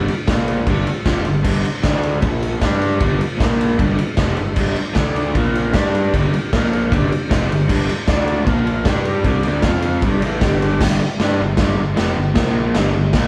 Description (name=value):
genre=garage rock duo or trio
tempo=154 BPM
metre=4/4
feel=straight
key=G minor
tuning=A4 = 440 Hz
part: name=crunchy overdriven guitar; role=riff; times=0.0-13.3 s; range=F2 to G4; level=-21 LUFS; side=equal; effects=none
part: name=fuzz picked electric bass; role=bass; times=0.0-13.3 s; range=F1 to G2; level=-27 LUFS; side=equal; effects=overdrive
part: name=raw garage drum kit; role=drums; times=0.1-13.2 s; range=crash cymbal, kick drum, ride cymbal, snare drum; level=-21 LUFS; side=equal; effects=none
part: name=combo organ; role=sustained chords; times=4.6-10.8 s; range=D4 to F5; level=-32 LUFS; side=equal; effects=none
room=moderate studio reverb, RT60 0.7 s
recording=band playing live in one room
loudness=-18 LUFS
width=mono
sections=0.0-10.8 A section; 10.8-13.3 B section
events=none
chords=0.3 Bb5; 0.7 G5; 1.9 D5; 2.2 Bb5; 2.6 G5; 3.4 Bb5; 3.8 Gm; 5.0 D5; 5.4 Bb5; 5.8 Gm; 6.5 Bb5; 6.9 Gm; 8.1 D5; 8.5 Bb5; 8.9 Gm; 9.6 F5; 10.0 Gm; 10.8 G5; 12.4 Bb5; 12.8 Gm